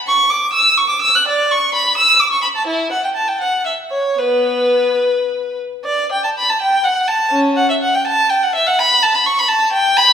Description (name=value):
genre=classical, baroque-style suite movement for unaccompanied violin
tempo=67-87 BPM (dotted quarters)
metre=6/8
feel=rubato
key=B minor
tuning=A4 = 440 Hz
part: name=rich violin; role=solo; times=0.1-10.1 s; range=B3 to F#6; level=-12 LUFS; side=equal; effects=none
room=moderate scoring stage reverb, RT60 1.5 s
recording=recorded in a church or concert hall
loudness=-13 LUFS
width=side -8 dB against mid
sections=0.0-5.9 A section; 5.9-10.1 A section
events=none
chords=none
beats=0.54 | 1.27 1.99 | 2.69 3.41 | 4.20 5.01 | 5.86 6.62 | 7.33 8.05 | 8.77 9.48